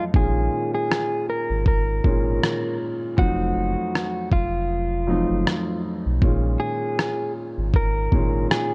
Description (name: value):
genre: lo-fi hip hop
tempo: 79 BPM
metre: 4/4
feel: swing 56% on 16ths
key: Bb minor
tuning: A4 = 437 Hz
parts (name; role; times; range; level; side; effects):
- mellow electric guitar; melody; 0.0-8.7 s; F4 to Bb4; -29 LUFS; equal; low-pass filter
- dark upright piano; accompaniment; 0.0-8.7 s; F2 to Bb5; -28 LUFS; equal; cassette tape, low-pass filter
- sub bass with octave; bass; 0.1-8.5 s; F1 to Cb2; -27 LUFS; equal; none
- lo-fi sampler-style drum kit; drums; 0.1-8.7 s; kick drum, rim click; -24 LUFS; equal; vintage 12-bit sampler grit
room: light reverb, digital ambience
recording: dark, warm production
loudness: -23 LUFS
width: mono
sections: 0.1-8.7 A section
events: hi-hats muted 0.1-8.7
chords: 0.1 Bbm7; 3.2 F7b9; 6.2 Bbm7